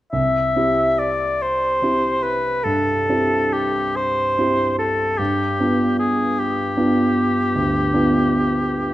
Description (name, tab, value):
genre	classical, romantic duo for oboe and grand piano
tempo	43-52 BPM (dotted quarters)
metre	12/8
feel	rubato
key	C major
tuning	A4 = 440 Hz
part	clear oboe	melody	0.1-8.9 s	G4 to E5	-20 LUFS	left 1 dB	none
part	clear grand piano	accompaniment	0.1-8.9 s	C2 to G4	-20 LUFS	right 1 dB	none
room	wet recital hall reverb, RT60 1.4 s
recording	dark, warm production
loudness	-17 LUFS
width	side -15 dB against mid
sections	0.1-8.9 A section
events	none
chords	0.1 C; 5.2 G7